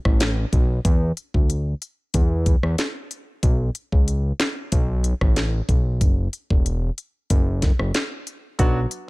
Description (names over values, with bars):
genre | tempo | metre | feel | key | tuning
dancehall | 93 BPM | 4/4 | straight | unclear | A4 = 440 Hz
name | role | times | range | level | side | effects
fat analog bass | bass | 0.1-8.9 s | E1 to E2 | -21 LUFS | equal | none
afro-pop drum kit | drums | 0.1-9.1 s | handclaps, hi-hat, kick drum, rim click, snare drum | -20 LUFS | equal | none
warm grand piano | accompaniment | 8.6-8.8 s | F#3 to F#4 | -24 LUFS | right 1 dB | none
room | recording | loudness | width
digital ambience | none | -19 LUFS | side -24 dB against mid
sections
0.0-9.1 A section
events
none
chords
0.0 Asus2; 0.8 Dsus2; 3.4 Aadd9; 6.0 Esus2; 8.6 Bm